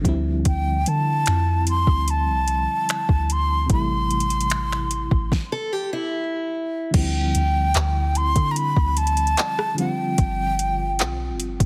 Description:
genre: contemporary R&B.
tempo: 74 BPM.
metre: 4/4.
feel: straight.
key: D minor.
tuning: A4 = 438 Hz.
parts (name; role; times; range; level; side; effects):
FM electric piano with tremolo; accompaniment; 0.0-11.7 s; C3 to F4; -31 LUFS; equal; none.
soft 808-style bass; bass; 0.0-11.7 s; G1 to D3; -25 LUFS; equal; none.
smooth R&B drum kit; drums; 0.0-11.7 s; crash cymbal, finger snaps, handclaps, hi-hat, kick drum, rim click, snare drum; -25 LUFS; equal; overdrive.
breathy jazz flute; melody; 0.5-11.4 s; G5 to C6; -26 LUFS; equal; delay.
picked acoustic archtop guitar; arpeggios; 5.5-6.9 s; E4 to A4; -28 LUFS; equal; delay.
room: digital ambience.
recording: heavily compressed radio sound, multiband compression.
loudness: -22 LUFS.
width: mono.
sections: 0.0-6.9 A section; 6.9-11.7 B section.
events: stop 5.3-6.9.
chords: 0.0 Dm11; 3.7 Am7; 6.9 Dm11; 9.8 G7sus4.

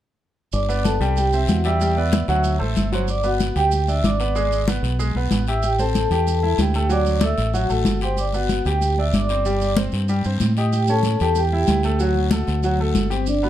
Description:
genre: latin, salsa.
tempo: 188 BPM.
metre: 4/4.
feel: straight.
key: G major.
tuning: A4 = 441 Hz.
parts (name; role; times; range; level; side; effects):
vibraphone with medium mallets; melody; 0.5-13.5 s; C4 to E6; -23 LUFS; equal; none.
deep dub fingered electric bass; bass; 0.5-13.5 s; G1 to A2; -21 LUFS; equal; none.
congas; percussion; 0.5-13.5 s; none; -24 LUFS; left 2 dB; none.
guiro; percussion; 0.5-13.5 s; none; -35 LUFS; left 8 dB; none.
maracas; percussion; 0.5-13.5 s; none; -36 LUFS; right 9 dB; none.
bright concert grand piano; accompaniment; 0.7-13.5 s; F#3 to B5; -26 LUFS; right 1 dB; none.
room: light reverb.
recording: dark, warm production.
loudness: -18 LUFS.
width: side -12 dB against mid.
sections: 0.5-3.1 A section; 3.1-13.3 B section.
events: none.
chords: 0.5 G; 1.2 C; 1.8 Em7; 2.4 D7; 3.1 Gmaj7; 4.4 E7/G#; 5.6 Am7; 6.9 D7; 8.2 G6; 9.5 C5/G; 10.7 A7; 12.0 D.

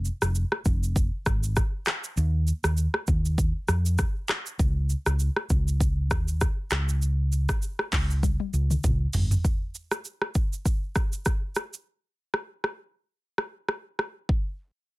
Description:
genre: afrobeats.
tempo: 99 BPM.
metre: 4/4.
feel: swing 55% on 16ths.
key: unclear.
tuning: A4 = 440 Hz.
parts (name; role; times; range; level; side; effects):
hollow-body short-scale fingered electric bass; bass; 0.0-9.4 s; F1 to F2; -24 LUFS; equal; none.
afro-pop drum kit; drums; 0.1-14.4 s; handclaps, hi-hat, kick drum, rim click, shaker, toms; -26 LUFS; equal; soft clipping on snare.
room: little or no reverb.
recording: dense, heavily limited modern master.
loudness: -24 LUFS.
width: side -21 dB against mid.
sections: 0.0-9.4 A section; 9.4-14.3 B section.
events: drum fill 8.2-9.4.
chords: none.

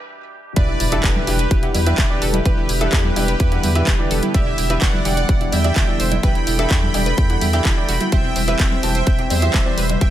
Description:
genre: progressive house.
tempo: 127 BPM.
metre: 4/4.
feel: straight.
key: E minor.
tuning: A4 = 440 Hz.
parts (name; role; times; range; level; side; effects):
evolving wavetable pad; sustained chords; 0.0-10.1 s; B2 to A4; -28 LUFS; equal; chorus, built-in reverb, vintage 12-bit sampler grit, sidechain pumping.
soft supersaw; melody; 0.6-10.1 s; G4 to B5; -24 LUFS; right 2 dB; sidechain pumping, digital delay.
analog pluck; arpeggios; 0.6-10.1 s; C4 to E5; -27 LUFS; equal; chorus, sidechain pumping, digital delay.
warm baby grand piano; stabs; 0.6-10.1 s; E3 to A5; -26 LUFS; equal; sidechain pumping, digital delay.
saturated sub bass; bass; 0.6-10.1 s; E1 to E2; -22 LUFS; equal; sidechain pumping.
big-room dance drum kit; drums; 0.6-10.1 s; handclaps, hi-hat; -24 LUFS; right 1 dB; none.
electronic kick drum; drums; 0.6-10.1 s; none; -18 LUFS; equal; none.
impact; sound effects; 0.6-2.5 s; none; -30 LUFS; equal; none.
congas and cowbell; percussion; 1.2-10.0 s; none; -29 LUFS; right 2 dB; sidechain pumping on perc.
room: little or no reverb.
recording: high-pass filter.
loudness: -15 LUFS.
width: side -12 dB against mid.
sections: 0.6-10.1 A section.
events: break 0.0-0.6; drop 0.6-10.1; impact 0.6-2.5.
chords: 0.0 Em7; 8.1 C/E.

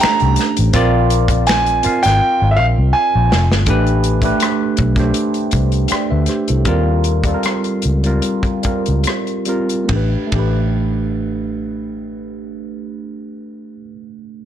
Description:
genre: R&B, neo-soul.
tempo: 70-82 BPM.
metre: 4/4.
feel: swing 54% on 16ths.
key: A minor.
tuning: A4 = 440 Hz.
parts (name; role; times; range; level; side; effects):
clear grand piano; melody; 0.0-3.5 s; E5 to Bb5; -17 LUFS; right 2 dB; tape echo.
tine electric piano; accompaniment; 0.0-14.4 s; G3 to G5; -19 LUFS; right 2 dB; phaser.
vintage muted fingered electric bass; bass; 0.0-13.8 s; F1 to D#2; -16 LUFS; left 1 dB; transformer saturation.
warm soul drum kit; drums; 0.0-10.6 s; finger snaps, hi-hat, kick drum, ride cymbal, rim click, snare drum; -20 LUFS; left 1 dB; soft clipping on kick, soft clipping on snare.
room: light reverb.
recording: blown-out, overdriven recording, overdrive.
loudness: -14 LUFS.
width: side -10 dB against mid.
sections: 0.0-3.7 A section; 3.7-9.9 B section; 9.9-13.3 C section.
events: drum fill 2.2-3.7; slowing down 3.7-9.9.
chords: 0.0 Bb6; 0.7 Bb7; 3.7 Am9; 6.7 D#13; 9.9 Asus2.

